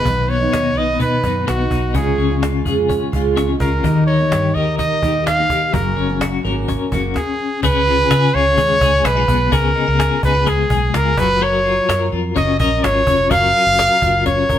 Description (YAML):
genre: jangly indie pop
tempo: 127 BPM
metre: 4/4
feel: straight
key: unclear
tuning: A4 = 440 Hz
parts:
  - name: warm trumpet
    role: melody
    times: 0.0-14.6 s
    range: F#4 to E#5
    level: -17 LUFS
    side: right 1 dB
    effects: none
  - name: fingerpicked steel-string acoustic guitar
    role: accompaniment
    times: 0.0-7.2 s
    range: F#2 to E#4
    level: -22 LUFS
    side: right 6 dB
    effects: none
  - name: twelve-string electric guitar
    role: arpeggios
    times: 0.0-14.6 s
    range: B2 to B4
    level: -20 LUFS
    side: left 6 dB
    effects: tremolo
  - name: vintage muted fingered electric bass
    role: bass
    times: 0.1-14.6 s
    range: E#1 to D#3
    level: -20 LUFS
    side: equal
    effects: none
  - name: cajon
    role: drums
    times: 0.1-14.6 s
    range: none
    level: -25 LUFS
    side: right 1 dB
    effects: none
room: moderate stone room reverb, RT60 1.1 s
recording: band playing live in one room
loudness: -14 LUFS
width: side -10 dB against mid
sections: 0.0-7.6 A section; 7.6-14.6 B section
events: none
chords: 0.0 B; 1.9 C#; 3.8 D#; 5.7 F#; 7.6 C#7; 11.2 F#maj7